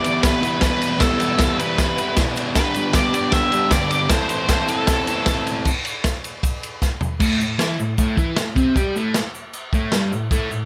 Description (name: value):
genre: garage rock duo or trio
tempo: 155 BPM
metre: 4/4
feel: straight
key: A minor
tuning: A4 = 440 Hz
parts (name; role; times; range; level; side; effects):
- octave-fuzz lead guitar; melody; 0.0-5.4 s; A4 to E5; -25 LUFS; equal; distortion
- crunchy overdriven guitar; riff; 0.0-10.7 s; E2 to A4; -24 LUFS; equal; none
- crunchy breakbeat drum kit; drums; 0.0-10.4 s; crash cymbal, kick drum, ride cymbal, snare drum, toms; -23 LUFS; equal; none
- tube shaker; percussion; 0.1-10.6 s; none; -38 LUFS; equal; none
room: light reverb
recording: none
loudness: -20 LUFS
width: mono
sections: 0.0-5.7 A section; 5.7-7.2 B section; 7.2-10.7 C section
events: drum fill 6.8-7.2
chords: 0.0 Em; 2.6 G; 4.1 Am; 5.7 N.C.; 7.2 A5